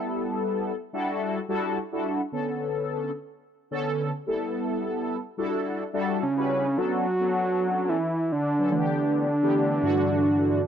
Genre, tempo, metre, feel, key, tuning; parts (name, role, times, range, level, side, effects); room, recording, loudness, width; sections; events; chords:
funk; 108 BPM; 4/4; swing 56% on 16ths; B minor; A4 = 439 Hz
mellow synth brass; accompaniment; 0.0-10.6 s; G2 to B4; -26 LUFS; equal; chorus, phaser
fat analog lead; melody; 6.2-10.6 s; C#4 to F#4; -23 LUFS; equal; slapback echo
digital ambience; dry, close 1970s-style studio recording; -24 LUFS; side -8 dB against mid
0.0-6.8 A section; 6.8-10.7 B section
0.0 G69; 0.9 Em11/G; 2.3 Bm9; 4.3 G69; 5.4 Em11/G; 6.8 Bm9; 8.7 G69; 9.8 Em11/G